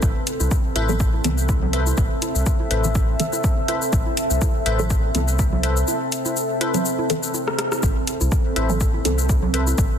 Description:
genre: dub techno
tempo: 123 BPM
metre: 4/4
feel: swing 55% on 16ths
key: A minor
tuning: A4 = 441 Hz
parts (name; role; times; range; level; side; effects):
- deep dark ambient pad; sustained chords; 0.0-10.0 s; C4 to E5; -26 LUFS; equal; chorus, built-in reverb, vintage 12-bit sampler grit, sidechain pumping
- round analog bass; bass; 0.0-9.9 s; A1 to C2; -22 LUFS; equal; sidechain pumping
- deep house drum kit; drums; 0.0-9.9 s; hi-hat, rim click, shaker; -27 LUFS; left 2 dB; overdrive
- electronic kick drum; drums; 0.0-9.9 s; none; -21 LUFS; equal; overdrive
- congas; percussion; 0.0-9.8 s; none; -31 LUFS; right 7 dB; sidechain pumping on perc, dub echo
- wavetable chord stab; riff; 0.8-9.7 s; A4 to E5; -30 LUFS; left 4 dB; sidechain pumping, dub echo
- filtered dub chord stab; stabs; 0.9-9.3 s; E3 to A4; -29 LUFS; equal; phaser, sidechain pumping, dub echo
room: light reverb, digital ambience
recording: dense, heavily limited modern master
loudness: -18 LUFS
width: side -8 dB against mid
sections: 0.0-10.0 A section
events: break 5.9-7.8; drum fill 7.5-7.8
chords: 0.0 Amadd9

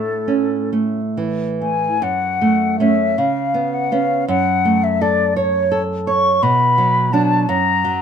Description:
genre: romantic duo for flute and classical guitar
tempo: 45-57 BPM (dotted quarters)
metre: 6/8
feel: rubato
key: F# minor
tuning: A4 = 440 Hz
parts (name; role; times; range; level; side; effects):
- concert flute; melody; 0.0-8.0 s; A4 to C#6; -18 LUFS; left 4 dB; none
- nylon-string guitar; accompaniment; 0.0-8.0 s; F#2 to C#5; -18 LUFS; right 4 dB; none
room: light reverb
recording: minimal, uncompressed stereo recording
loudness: -15 LUFS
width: side -7 dB against mid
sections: 0.0-2.0 A section; 2.0-8.0 B section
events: none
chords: 0.0 A; 2.0 F#m; 3.2 C#7; 4.3 F#m; 6.4 Bm; 7.5 F#

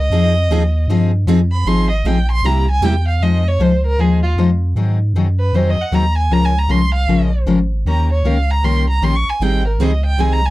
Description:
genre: acoustic string swing (jazz manouche)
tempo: 155 BPM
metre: 4/4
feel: swing 63% on 8ths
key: F minor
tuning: A4 = 442 Hz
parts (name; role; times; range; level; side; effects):
- warm violin; melody; 0.0-10.5 s; F4 to Db6; -21 LUFS; right 2 dB; none
- warm sub bass; bass; 0.0-10.5 s; Ab1 to Ab2; -16 LUFS; equal; none
- picked steel-string acoustic guitar; accompaniment; 0.1-10.4 s; C3 to C5; -18 LUFS; left 4 dB; none
- picked steel-string acoustic guitar; accompaniment; 0.1-2.9, 9.4-10.4 s; C3 to Ab4; -22 LUFS; right 6 dB; none
room: little or no reverb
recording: dry, close 1970s-style studio recording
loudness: -13 LUFS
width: side -17 dB against mid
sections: 0.0-3.2 A section; 3.2-10.5 A section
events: violin solo 0.0-10.5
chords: 0.1 Fm11; 2.4 C7; 3.2 Fm7; 4.8 Ab7; 6.3 Db6; 7.9 Eb7; 9.4 Abmaj7

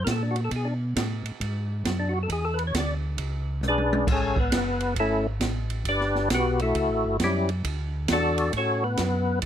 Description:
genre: soul jazz organ trio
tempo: 135 BPM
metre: 4/4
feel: swing 65% on 8ths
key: unclear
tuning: A4 = 438 Hz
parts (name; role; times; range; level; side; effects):
- percussive tonewheel organ; melody; 0.0-9.4 s; G3 to D5; -25 LUFS; left 2 dB; slow rotary speaker, chorus vibrato
- mellow tonewheel organ; bass; 0.0-9.5 s; F#1 to B2; -28 LUFS; equal; slow rotary speaker
- open jazz drum kit; drums; 0.1-9.5 s; crash cymbal, hi-hat, kick drum, ride cymbal, snare drum, toms; -30 LUFS; right 2 dB; none
room: little or no reverb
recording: none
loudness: -23 LUFS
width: side -10 dB against mid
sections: 0.0-9.5 A section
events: tonewheel organ solo 0.0-9.5; drum fill 3.6-4.1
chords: 0.0 F#aug; 0.5 B5; 2.3 E7; 4.1 Amaj7; 5.9 Em9; 6.8 A6; 7.6 Dmaj9

